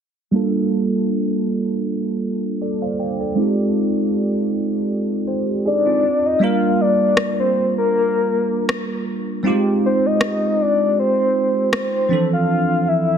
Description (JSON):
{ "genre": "contemporary R&B", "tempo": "79 BPM", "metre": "4/4", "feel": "swing 54% on 16ths", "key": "G minor", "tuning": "A4 = 440 Hz", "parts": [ { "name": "bell-like tine electric piano", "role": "accompaniment", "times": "0.3-13.2 s", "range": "E3 to G5", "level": "-19 LUFS", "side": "right 2 dB", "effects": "analog chorus" }, { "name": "soft octave-layered synth lead", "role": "melody", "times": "5.7-13.2 s", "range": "Bb4 to F5", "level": "-18 LUFS", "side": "left 2 dB", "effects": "chorus, tremolo, tape echo" }, { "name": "electronic rim click", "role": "drums", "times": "7.2-11.9 s", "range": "none", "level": "-22 LUFS", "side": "left 1 dB", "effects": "overdrive" } ], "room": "light reverb, digital ambience", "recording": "dense, heavily limited modern master, low-pass filter", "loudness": "-17 LUFS", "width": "side -7 dB against mid", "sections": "0.3-6.4 A section; 6.4-13.2 B section", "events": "filter sweep 0.3-6.4; kick muted 6.4-13.2", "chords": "0.3 Gm7; 3.4 Fm7; 6.0 N.C.; 6.4 Gm7; 9.4 Fm7; 12.1 Dm7" }